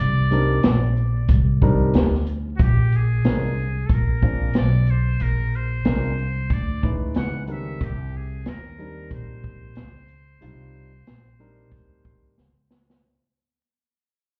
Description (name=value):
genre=hip hop, jazz-hop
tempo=92 BPM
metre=4/4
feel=swing 60% on 16ths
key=C minor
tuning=A4 = 440 Hz
part: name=trumpet with metal mute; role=melody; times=0.0-12.3 s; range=F#4 to F#5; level=-34 LUFS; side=equal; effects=analog delay
part: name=upright bass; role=bass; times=0.0-13.0 s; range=Bb1 to Eb2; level=-24 LUFS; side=equal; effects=none
part: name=dark baby grand piano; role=accompaniment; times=0.3-12.3 s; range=Eb3 to C5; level=-30 LUFS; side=equal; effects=none
part: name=open jazz drum kit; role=drums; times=0.3-13.0 s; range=hi-hat, kick drum, shaker, snare drum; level=-24 LUFS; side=equal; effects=none
room=small room ambience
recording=heard muffled through a wall, club reverb, vinyl crackle, EQ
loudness=-21 LUFS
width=mono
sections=0.0-13.0 A section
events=fade-out 0.0-13.0; drum fill 12.4-13.0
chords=0.0 Cm9; 2.6 Bb9; 7.2 Dbm9; 7.8 Cm9